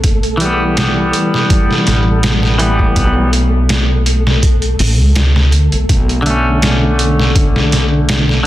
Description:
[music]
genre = trip hop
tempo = 82 BPM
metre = 4/4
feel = swing 54% on 16ths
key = unclear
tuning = A4 = 439 Hz
[part]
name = semi-hollow electric guitar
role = accompaniment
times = 0.0-8.5 s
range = D3 to C#4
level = -16 LUFS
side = equal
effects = harmonic tremolo, tape echo
[part]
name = upright bass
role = bass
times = 0.0-8.5 s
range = A1 to D2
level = -14 LUFS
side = equal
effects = none
[part]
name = trip hop sampler-style drum kit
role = drums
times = 0.0-8.4 s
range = hi-hat, kick drum, snare drum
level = -14 LUFS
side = equal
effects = none
[part]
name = flickering grainy texture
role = texture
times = 0.0-8.5 s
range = A3 to A4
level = -23 LUFS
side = equal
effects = built-in reverb
[sound]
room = digital ambience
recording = dense, heavily limited modern master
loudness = -10 LUFS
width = side -15 dB against mid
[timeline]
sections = 0.0-8.5 A section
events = none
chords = 0.0 Em; 5.9 Bm7

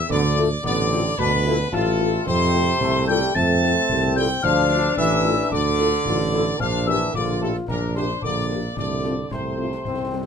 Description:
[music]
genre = military-style march for wind band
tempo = 111 BPM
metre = 2/4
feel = straight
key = F major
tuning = A4 = 440 Hz
[part]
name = bright trumpet section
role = melody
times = 0.0-10.3 s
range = A4 to A5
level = -27 LUFS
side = left 1 dB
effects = none
[part]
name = mellow wooden piccolo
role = second line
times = 0.0-10.3 s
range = A5 to A6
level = -26 LUFS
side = left 6 dB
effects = none
[part]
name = mellow trombone section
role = sustained chords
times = 0.0-10.3 s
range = A3 to F4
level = -27 LUFS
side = left 5 dB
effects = none
[part]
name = warm euphonium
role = second line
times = 0.1-10.3 s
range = A2 to A3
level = -26 LUFS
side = right 4 dB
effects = none
[part]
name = mellow tuba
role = bass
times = 0.1-10.3 s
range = A1 to F2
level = -24 LUFS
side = right 3 dB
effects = none
[part]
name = concert snare drum, concert bass drum and clash cymbals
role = drums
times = 0.1-10.3 s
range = none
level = -34 LUFS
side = left 2 dB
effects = none
[part]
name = dark French horn section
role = accompaniment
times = 0.4-10.2 s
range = G3 to A4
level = -25 LUFS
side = left 3 dB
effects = none
[sound]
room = light reverb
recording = close, detailed microphones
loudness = -18 LUFS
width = side -7 dB against mid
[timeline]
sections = 0.0-10.3 A section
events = none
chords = 0.1 Dm; 2.3 F; 4.4 Dm; 6.6 Gm7/Bb; 8.8 F/C

